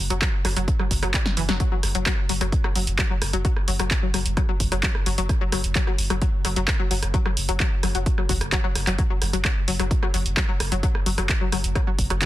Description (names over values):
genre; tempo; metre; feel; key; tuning
driving peak-time techno; 130 BPM; 4/4; straight; unclear; A4 = 441 Hz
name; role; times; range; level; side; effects
warm sub bass; bass; 0.0-12.2 s; F#1; -26 LUFS; equal; overdrive, sidechain pumping, low-pass filter
tight sequenced synth; riff; 0.1-12.2 s; E3 to G3; -28 LUFS; left 4 dB; chorus, tube saturation, sidechain pumping, digital delay
punchy analog drum machine; drums; 0.1-12.3 s; handclaps, hi-hat, rim click, snare drum; -26 LUFS; right 1 dB; none
electronic kick drum; drums; 0.2-12.3 s; none; -24 LUFS; equal; none
room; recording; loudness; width
digital ambience; dense, heavily limited modern master; -20 LUFS; side -15 dB against mid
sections
0.0-12.3 A section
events
drum fill 1.3-1.6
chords
none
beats
0.22 0.68 1.14 | 1.60 2.06 2.52 2.98 | 3.45 3.91 4.37 4.83 | 5.29 5.75 6.22 6.68 | 7.14 7.60 8.06 8.52 | 8.98 9.45 9.91 10.37 | 10.83 11.29 11.76 12.22